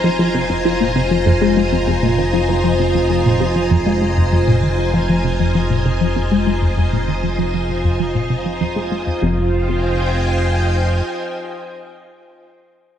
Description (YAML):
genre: ambient, sequencer-driven space music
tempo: 98 BPM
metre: 4/4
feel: straight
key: F minor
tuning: A4 = 440 Hz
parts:
  - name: string machine, full ensemble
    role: sustained chords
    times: 0.0-12.4 s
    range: F4 to Ab5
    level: -20 LUFS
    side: equal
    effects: ensemble chorus
  - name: tight sequenced synth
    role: riff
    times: 0.0-9.5 s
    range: F2 to Ab3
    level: -18 LUFS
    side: left 1 dB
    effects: chorus, phaser, ping-pong delay
  - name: fat analog bass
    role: bass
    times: 0.0-11.0 s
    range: F1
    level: -21 LUFS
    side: equal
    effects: none
  - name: bubbling stepped-filter texture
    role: texture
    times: 0.0-9.2 s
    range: Bb5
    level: -31 LUFS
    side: right 1 dB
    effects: chorus, built-in reverb
room: wet spring reverb, RT60 2.3 s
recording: echo-heavy mix, cassette tape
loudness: -15 LUFS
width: side -9 dB against mid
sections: 0.0-9.2 A section; 9.2-11.7 B section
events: filter sweep on synth arpeggio sound 0.0-9.2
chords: 0.0 Fm7